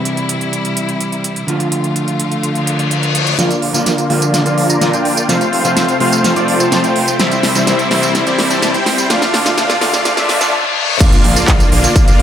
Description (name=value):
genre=EDM, festival progressive house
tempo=126 BPM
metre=4/4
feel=straight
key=unclear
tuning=A4 = 440 Hz
part: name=electric guitar at the edge of break-up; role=accompaniment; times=0.0-10.5 s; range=C3 to A4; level=-19 LUFS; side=right 1 dB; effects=vintage 12-bit sampler grit, sidechain pumping, digital delay
part: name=clear studio string section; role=sustained chords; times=0.0-12.2 s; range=C3 to F4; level=-22 LUFS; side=left 2 dB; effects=sidechain pumping, low-pass filter
part: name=big-room dance drum kit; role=drums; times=0.1-12.2 s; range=crash cymbal, handclaps, hi-hat, snare drum, tambourine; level=-18 LUFS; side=right 1 dB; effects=none
part: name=reverse cymbal, riser and impact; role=sound effects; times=2.6-12.2 s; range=none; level=-22 LUFS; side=left 3 dB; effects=none
part: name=supersaw chords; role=riff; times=3.4-12.2 s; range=G3 to Bb5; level=-15 LUFS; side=equal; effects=cassette tape, sidechain pumping, low-pass filter, digital delay
part: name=wide detuned saw bass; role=bass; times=3.4-12.2 s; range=F1 to Bb2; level=-23 LUFS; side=equal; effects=none
part: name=electronic kick drum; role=drums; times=11.0-12.1 s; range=none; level=-10 LUFS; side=equal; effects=none
room=moderate concert hall reverb, RT60 2.1 s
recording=high-pass filter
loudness=-11 LUFS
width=side -9 dB against mid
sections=0.0-3.4 A section; 3.4-11.0 B section; 11.0-12.2 C section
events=reverse cymbal 2.6-3.4, 10.2-11.0; build-up 3.4-11.0; drum fill 3.4-10.5; filter sweep on supersaw synth 3.4-11.0; filter sweep on string section 3.4-11.0; filter sweep 3.4-11.0; drop 11.0-12.2; impact 11.0-12.2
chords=0.0 C; 1.5 Dm; 3.4 Bb; 5.3 F; 7.2 C; 9.1 Dm; 11.0 Bb